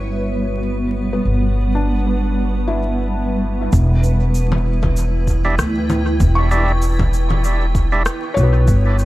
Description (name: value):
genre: ambient dub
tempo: 97 BPM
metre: 4/4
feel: swing 56% on 16ths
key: E dorian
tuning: A4 = 440 Hz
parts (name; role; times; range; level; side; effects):
- granular cloud pad; sustained chords; 0.0-9.1 s; G3 to G5; -23 LUFS; right 1 dB; built-in reverb
- felt-muted upright piano; arpeggios; 0.0-9.1 s; B3 to C#6; -26 LUFS; left 2 dB; dub echo
- upright bass; bass; 0.0-9.1 s; E1 to D2; -17 LUFS; equal; none
- backwards swelling texture; texture; 0.0-3.7 s; C#4 to C#6; -41 LUFS; right 2 dB; none
- electronic cabasa, congas and rim click; drums; 3.7-9.1 s; none; -25 LUFS; left 1 dB; studio reverb, dub echo
- electronic kick drum; drums; 3.7-8.8 s; none; -19 LUFS; equal; studio reverb
- overdriven tonewheel organ; stabs; 5.4-8.0 s; G3 to E4; -24 LUFS; right 2 dB; dub echo
room: little or no reverb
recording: vinyl crackle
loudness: -15 LUFS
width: side -17 dB against mid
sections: 0.0-3.7 A section; 3.7-9.1 B section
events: none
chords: 0.0 Gmaj7; 3.7 Em7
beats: 0.02 0.64 | 1.25 1.87 2.49 3.11 | 3.73 4.35 4.96 5.58 | 6.20 6.82 7.44 8.06 | 8.68